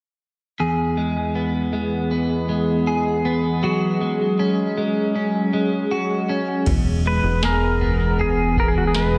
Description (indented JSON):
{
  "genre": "dream pop",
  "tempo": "79 BPM",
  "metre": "4/4",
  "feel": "straight",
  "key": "unclear",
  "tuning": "A4 = 442 Hz",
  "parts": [
    { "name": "warbly tape-like pad", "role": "sustained chords", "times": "1.4-9.2 s", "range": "E3 to G#4", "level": "-26 LUFS", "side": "equal", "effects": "chorus, built-in reverb, shimmer reverb" },
    { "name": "clean electric guitar", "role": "arpeggios", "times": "0.6-9.2 s", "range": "E2 to G#4", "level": "-24 LUFS", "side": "equal", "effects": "lush chorus, analog delay, shimmer reverb" },
    { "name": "chorused synth bass", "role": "bass", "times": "6.7-9.2 s", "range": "E1", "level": "-25 LUFS", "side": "equal", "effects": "none" },
    { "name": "booming analog drum machine", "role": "drums", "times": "6.7-9.1 s", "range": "crash cymbal, kick drum, snare drum, toms", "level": "-27 LUFS", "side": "equal", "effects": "none" },
    { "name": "clean lap steel guitar", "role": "melody", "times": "7.1-9.2 s", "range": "F#4 to B4", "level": "-25 LUFS", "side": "equal", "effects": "analog delay, shimmer reverb" }
  ],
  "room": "wet echo chamber reverb, RT60 2.1 s",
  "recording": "echo-heavy mix",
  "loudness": "-21 LUFS",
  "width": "mono",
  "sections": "0.6-6.7 A section; 6.7-9.2 B section",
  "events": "none",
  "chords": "0.6 E; 3.6 F#sus2; 6.7 E"
}